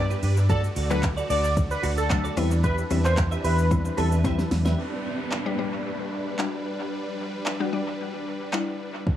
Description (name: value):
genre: dance-pop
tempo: 112 BPM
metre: 4/4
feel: straight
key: G major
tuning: A4 = 440 Hz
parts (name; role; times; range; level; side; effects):
- octave-doubled lead; melody; 0.0-4.1 s; A4 to D5; -30 LUFS; right 1 dB; chorus, phaser, dub echo
- mallet-like synth pluck; accompaniment; 0.0-9.1 s; F#3 to D5; -31 LUFS; left 5 dB; chorus, dub echo
- supersaw chords; sustained chords; 0.0-9.2 s; D3 to B4; -33 LUFS; equal; sidechain pumping
- vintage muted fingered electric bass; bass; 0.0-4.7 s; D2 to G2; -24 LUFS; equal; sidechain pumping
- direct-recorded clean electric guitar; riff; 0.1-4.8 s; D4 to E5; -34 LUFS; right 5 dB; ensemble chorus, dub echo
- smooth R&B drum kit; drums; 0.1-9.2 s; handclaps, hi-hat, kick drum, shaker, snare drum; -28 LUFS; equal; overdrive, dub echo
- downlifter; sound effects; 4.8-9.1 s; none; -36 LUFS; right 2 dB; none
room: light reverb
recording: echo-heavy mix, small room ambience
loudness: -23 LUFS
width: side -11 dB against mid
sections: 0.0-4.8 A section; 4.8-9.2 B section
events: drop 0.0-4.8; drum fill 4.2-4.8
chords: 0.5 D; 2.4 Cmaj7/E; 4.8 G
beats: | 0.50 1.03 1.57 2.10 | 2.64 3.17 3.71 4.25 | 4.78 5.32 5.85 6.39 | 6.92 7.46 8.00 8.53 | 9.07